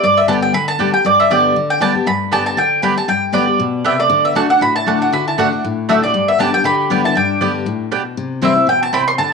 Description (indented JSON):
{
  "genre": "bluegrass",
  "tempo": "236 BPM",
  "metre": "4/4",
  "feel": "swing 55% on 8ths",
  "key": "G major",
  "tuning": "A4 = 441 Hz",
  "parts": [
    { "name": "mandolin", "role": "melody", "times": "0.0-9.3 s", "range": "D5 to C6", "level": "-14 LUFS", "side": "right 1 dB", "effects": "cassette tape, plate reverb" },
    { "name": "picked steel-string acoustic guitar", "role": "accompaniment", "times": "0.0-9.3 s", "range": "G2 to G4", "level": "-19 LUFS", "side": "left 6 dB", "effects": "cassette tape" },
    { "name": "mandolin", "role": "stabs", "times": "0.3-9.0 s", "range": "A3 to G5", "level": "-22 LUFS", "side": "right 9 dB", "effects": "cassette tape" },
    { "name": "lap resonator guitar", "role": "second line", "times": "3.9-7.9 s", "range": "G3 to G4", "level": "-23 LUFS", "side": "left 6 dB", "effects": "cassette tape, plate reverb" }
  ],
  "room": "wet small room reverb, RT60 0.5 s",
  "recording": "home recording on cassette",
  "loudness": "-13 LUFS",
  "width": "side -4 dB against mid",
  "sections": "0.0-8.2 A section; 8.2-9.3 B section",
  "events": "none",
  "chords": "0.0 G; 4.1 D; 6.1 G; 8.2 C",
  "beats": "| 0.04 0.29 0.54 0.80 | 1.05 1.31 1.56 1.82 | 2.07 2.32 2.58 2.83 | 3.09 3.34 3.60 3.85 | 4.11 4.36 4.61 4.87 | 5.12 5.38 5.63 5.89 | 6.14 6.39 6.65 6.90 | 7.16 7.41 7.66 7.92 | 8.17 8.43 8.68 8.93 | 9.19"
}